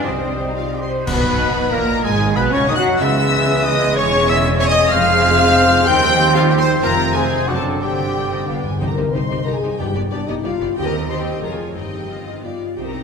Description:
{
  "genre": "classical, dramatic, fast romantic movement for symphony orchestra",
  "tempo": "185 BPM",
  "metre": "3/4",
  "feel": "straight",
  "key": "G# minor, C minor from 4.9 s",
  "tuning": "A4 = 439 Hz",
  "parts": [
    { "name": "clear symphonic violin section", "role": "melody", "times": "0.0-13.0 s", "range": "C5 to G6", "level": "-24 LUFS", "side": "left 3 dB", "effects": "none" },
    { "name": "clear clarinet", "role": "second line", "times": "0.0-8.6 s", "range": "F4 to G5", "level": "-24 LUFS", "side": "equal", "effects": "none" },
    { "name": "large flute ensemble", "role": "second line", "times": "0.0-8.6 s", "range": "F4 to C6", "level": "-25 LUFS", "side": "left 2 dB", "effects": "none" },
    { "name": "warm oboe", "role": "second line", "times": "0.0-8.5 s", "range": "G#4 to F#5", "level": "-26 LUFS", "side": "right 1 dB", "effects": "none" },
    { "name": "warm symphonic violin section", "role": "second line", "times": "0.0-13.0 s", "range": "F4 to C6", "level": "-27 LUFS", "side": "left 3 dB", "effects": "none" },
    { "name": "clear studio viola section", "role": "accompaniment", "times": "0.0-13.0 s", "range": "G3 to G#4", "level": "-27 LUFS", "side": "right 1 dB", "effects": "none" },
    { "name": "warm bassoon", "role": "accompaniment", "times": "0.0-8.6 s", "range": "G3 to F#4", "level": "-26 LUFS", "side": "right 2 dB", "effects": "none" },
    { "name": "dark French horn section", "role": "sustained chords", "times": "0.0-13.0 s", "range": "G#3 to C5", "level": "-25 LUFS", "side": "left 4 dB", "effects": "none" },
    { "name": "concert harp", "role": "arpeggios", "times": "0.0-13.0 s", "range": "F2 to D#6", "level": "-27 LUFS", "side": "left 6 dB", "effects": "none" },
    { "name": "rich symphonic cello section", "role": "bass", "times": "0.0-13.0 s", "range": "Eb2 to C4", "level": "-26 LUFS", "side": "right 2 dB", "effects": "none" },
    { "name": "rich symphonic double bass section", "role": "bass", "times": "0.0-13.0 s", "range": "E1 to F#2", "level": "-24 LUFS", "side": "right 4 dB", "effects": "none" },
    { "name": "clear trumpet section", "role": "stabs", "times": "0.6-8.6 s", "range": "F4 to G5", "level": "-22 LUFS", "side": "equal", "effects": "none" },
    { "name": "warm trombone section", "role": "sustained chords", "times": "1.1-8.6 s", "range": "G#2 to G#3", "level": "-27 LUFS", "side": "right 4 dB", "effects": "none" },
    { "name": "clash cymbals and concert bass drum", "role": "percussion", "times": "1.1-1.7 s", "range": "none", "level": "-27 LUFS", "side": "equal", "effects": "none" },
    { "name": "timpani", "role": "percussion", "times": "8.5-10.3 s", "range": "G2 to C3", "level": "-26 LUFS", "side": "left 1 dB", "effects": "none" }
  ],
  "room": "wet concert hall reverb, RT60 2.1 s",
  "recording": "minimal, uncompressed stereo recording",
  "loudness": "-14 LUFS",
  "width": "side -6 dB against mid",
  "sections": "0.0-1.1 A section; 1.1-8.8 B section; 8.8-13.0 A section",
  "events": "band accent 1.1-1.4; timpani fill 8.5-8.8",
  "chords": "0.1 Cm; 1.1 G#m/B; 2.0 G#m; 3.0 C#m7; 4.0 C#m/E; 4.9 Fm; 5.9 Cm/Eb; 6.8 Fm; 7.5 D7/F#; 7.8 Gsus4; 8.5 G; 8.8 Cm; 9.8 G; 10.8 Cm/Eb; 11.4 Db/F; 11.8 Cm/G; 12.4 G"
}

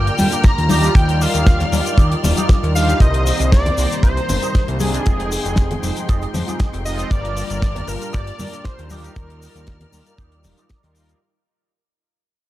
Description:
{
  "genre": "nu-disco, nu disco",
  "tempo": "117 BPM",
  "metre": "4/4",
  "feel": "straight",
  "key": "unclear",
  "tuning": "A4 = 440 Hz",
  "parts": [
    { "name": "wide unison lead", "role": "melody", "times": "0.0-10.7 s", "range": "Ab4 to Bb5", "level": "-25 LUFS", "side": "equal", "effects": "tape echo" },
    { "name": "mellow synth brass", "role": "accompaniment", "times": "0.0-11.2 s", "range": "D3 to G5", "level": "-25 LUFS", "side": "equal", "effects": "chorus, cassette tape, sidechain pumping" },
    { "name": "clear studio string section", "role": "sustained chords", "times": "0.0-11.2 s", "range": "Ab3 to F6", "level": "-30 LUFS", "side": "left 2 dB", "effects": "vintage 12-bit sampler grit, sidechain pumping" },
    { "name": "electric guitar with an envelope filter", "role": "riff", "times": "0.0-11.2 s", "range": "Eb4 to F5", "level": "-30 LUFS", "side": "right 4 dB", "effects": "ensemble chorus" },
    { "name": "fat analog bass", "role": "bass", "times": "0.0-11.1 s", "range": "Eb1 to G2", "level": "-20 LUFS", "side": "equal", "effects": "none" },
    { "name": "damped 70s drum kit", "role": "drums", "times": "0.1-11.2 s", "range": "hi-hat, rim click, shaker, snare drum", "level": "-26 LUFS", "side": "left 2 dB", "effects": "none" },
    { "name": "cabasa and congas", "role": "percussion", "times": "0.1-11.2 s", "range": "none", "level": "-26 LUFS", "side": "left 3 dB", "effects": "none" },
    { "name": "kick drum", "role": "drums", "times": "0.4-10.8 s", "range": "none", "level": "-14 LUFS", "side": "equal", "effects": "none" }
  ],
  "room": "little or no reverb",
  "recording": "dry, gritty hardware recording",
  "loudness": "-15 LUFS",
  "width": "side -15 dB against mid",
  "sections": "0.0-11.2 A section",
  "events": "drop 0.0-11.2; fade-out 3.0-11.2; clean electric guitar fill 10.4-11.2",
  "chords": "0.0 Gm7; 0.7 Ebmaj9; 3.0 Cm7; 5.1 Fm9; 7.1 Gm7; 8.9 Ebmaj9"
}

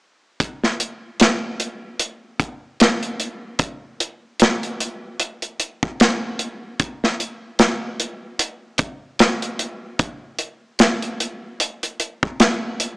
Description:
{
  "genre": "trip hop",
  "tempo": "75 BPM",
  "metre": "4/4",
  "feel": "swing 57% on 16ths",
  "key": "none",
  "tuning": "none",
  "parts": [
    { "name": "modern studio drum kit", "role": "drums", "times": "0.4-13.0 s", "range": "hi-hat, kick drum, snare drum", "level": "-17 LUFS", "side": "equal", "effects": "none" }
  ],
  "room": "moderate echo chamber reverb, RT60 2.5 s",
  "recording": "small speaker sound",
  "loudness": "-19 LUFS",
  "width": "side -26 dB against mid",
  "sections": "0.4-13.0 A section",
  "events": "none",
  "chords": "none"
}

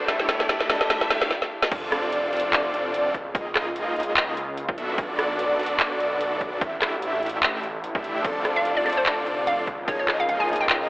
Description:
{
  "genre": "future bass",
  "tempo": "147 BPM",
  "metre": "4/4",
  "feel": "swing 55% on 16ths, half-time",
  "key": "unclear",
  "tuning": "A4 = 440 Hz",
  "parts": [
    { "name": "clear grand piano", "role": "accompaniment", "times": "0.0-1.7, 8.2-10.9 s", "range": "F3 to A4", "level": "-30 LUFS", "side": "left 1 dB", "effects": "sidechain pumping, digital delay" },
    { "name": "shimmering ambient pad", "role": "sustained chords", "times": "0.0-10.9 s", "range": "D3 to A4", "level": "-39 LUFS", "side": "right 1 dB", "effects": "none" },
    { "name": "supersaw chords", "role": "riff", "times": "0.0-10.9 s", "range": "A3 to G5", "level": "-28 LUFS", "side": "equal", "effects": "sidechain pumping, digital delay" },
    { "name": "riser and sub drop", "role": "sound effects", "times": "0.0-3.3 s", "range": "none", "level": "-32 LUFS", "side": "equal", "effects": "none" },
    { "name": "trap drum kit", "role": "drums", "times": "0.1-10.8 s", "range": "crash cymbal, handclaps, hi-hat, rim click, snare drum", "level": "-24 LUFS", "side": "equal", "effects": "none" },
    { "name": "airy dreamy lead", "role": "arpeggios", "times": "1.7-10.9 s", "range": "D5 to E5", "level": "-30 LUFS", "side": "equal", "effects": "chorus, sidechain pumping" },
    { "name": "wide detuned saw bass", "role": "bass", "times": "1.7-10.9 s", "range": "F1 to Db2", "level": "-33 LUFS", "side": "equal", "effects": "chorus, sidechain pumping" },
    { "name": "electronic kick drum", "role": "drums", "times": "1.7-10.0 s", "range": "none", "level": "-29 LUFS", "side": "equal", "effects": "overdrive" },
    { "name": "hollow square pluck", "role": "melody", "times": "8.6-10.9 s", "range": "C5 to Ab5", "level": "-25 LUFS", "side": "equal", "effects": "chorus, sidechain pumping" }
  ],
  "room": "moderate digital room reverb, RT60 1.0 s, digital ambience",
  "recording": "telephone sound",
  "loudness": "-22 LUFS",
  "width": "side -22 dB against mid",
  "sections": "0.0-1.7 A section; 1.7-10.9 B section",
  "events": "build-up 0.0-1.7; drum fill 0.0-1.3, 1.3-1.7; riser 0.0-1.3; stop 1.3-1.7; drop 1.7-10.9; impact 1.7-3.3",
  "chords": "0.1 A7sus4; 1.7 F6; 3.1 Db69; 4.8 Bm7; 6.6 A7sus4; 8.2 F6; 9.7 Db69"
}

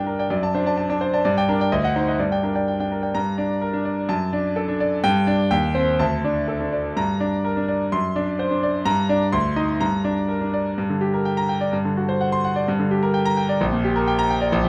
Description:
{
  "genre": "classical, virtuoso piano study",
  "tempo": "127 BPM",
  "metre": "2/4",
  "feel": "rubato",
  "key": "G minor",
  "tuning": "A4 = 440 Hz",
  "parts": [
    { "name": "bright concert grand piano", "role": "solo", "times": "0.0-14.7 s", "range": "Bb1 to C6", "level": "-22 LUFS", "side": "equal", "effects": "none" }
  ],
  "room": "light reverb",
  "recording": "dark, warm production",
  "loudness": "-22 LUFS",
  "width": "mono",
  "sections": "0.0-3.2 A section; 3.2-10.8 A section; 10.8-14.7 B section",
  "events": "none",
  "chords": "0.3 D7/F#; 1.2 Gm; 1.7 D7b9; 2.2 Gm; 4.1 D/F#; 5.0 G5; 5.5 Cm/Eb; 6.0 D5; 7.0 Gm; 7.9 D7/F#; 8.9 Gm; 9.3 Cmadd9/D; 9.8 Gm; 11.7 D7/G; 12.7 Gm; 13.6 Gm/Bb"
}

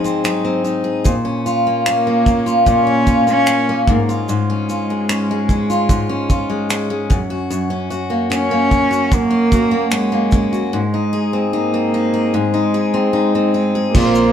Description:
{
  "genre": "acoustic pop",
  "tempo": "74 BPM",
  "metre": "4/4",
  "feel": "straight",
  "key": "unclear",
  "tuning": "A4 = 440 Hz",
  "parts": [
    { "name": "warm cello", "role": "melody", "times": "0.0-14.3 s", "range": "F3 to Db4", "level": "-19 LUFS", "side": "right 1 dB", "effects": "none" },
    { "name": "picked steel-string acoustic guitar", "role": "accompaniment", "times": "0.0-14.3 s", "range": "Gb2 to Ab4", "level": "-17 LUFS", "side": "left 1 dB", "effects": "none" },
    { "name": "cloth-damped thuddy drum kit", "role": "drums", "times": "0.1-14.3 s", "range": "crash cymbal, finger snaps, kick drum, shaker", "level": "-18 LUFS", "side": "equal", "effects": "none" },
    { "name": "barky reed electric piano", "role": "accompaniment", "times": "13.9-14.3 s", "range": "Bb3 to C5", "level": "-22 LUFS", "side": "left 2 dB", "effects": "none" },
    { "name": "upright bass", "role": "bass", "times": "13.9-14.3 s", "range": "Bb1", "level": "-20 LUFS", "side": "right 3 dB", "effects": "none" }
  ],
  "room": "moderate stone room reverb, RT60 0.9 s",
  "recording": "band playing live in one room",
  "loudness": "-14 LUFS",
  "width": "side -9 dB against mid",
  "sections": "0.0-13.9 A section",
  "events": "none",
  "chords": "0.0 Ab; 1.1 Bbm; 3.9 Db/Ab; 7.1 Gb; 10.7 Ab"
}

